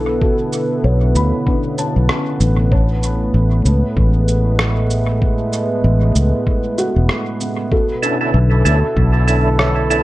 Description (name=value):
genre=ambient dub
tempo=96 BPM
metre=4/4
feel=swing 58% on 16ths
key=B dorian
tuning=A4 = 440 Hz
part: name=warm analog pad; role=sustained chords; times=0.0-10.0 s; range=A2 to B4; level=-19 LUFS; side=right 1 dB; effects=chorus
part: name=felt-muted upright piano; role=arpeggios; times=0.0-10.0 s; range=B3 to B5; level=-24 LUFS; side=left 2 dB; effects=tape echo
part: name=fingered electric bass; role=bass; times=0.0-10.0 s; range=E1 to D2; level=-14 LUFS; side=equal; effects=none
part: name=electronic kick drum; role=drums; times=0.2-9.1 s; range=none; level=-18 LUFS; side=equal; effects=none
part: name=electronic cabasa and rim click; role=drums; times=0.5-10.0 s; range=none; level=-23 LUFS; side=equal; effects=dub echo
part: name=overdriven tonewheel organ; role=stabs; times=8.0-10.0 s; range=C#4 to A4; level=-20 LUFS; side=right 3 dB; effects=chorus vibrato, stopped rotary speaker, low-pass filter, dub echo
room=light reverb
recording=none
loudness=-13 LUFS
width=side -16 dB against mid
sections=0.0-10.0 A section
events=none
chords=0.0 Bm11; 2.7 Amaj7; 7.7 Bm11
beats=| 0.22 0.84 1.47 2.09 | 2.72 3.34 3.97 4.59 | 5.22 5.84 6.47 7.09 | 7.72 8.34 8.97 9.59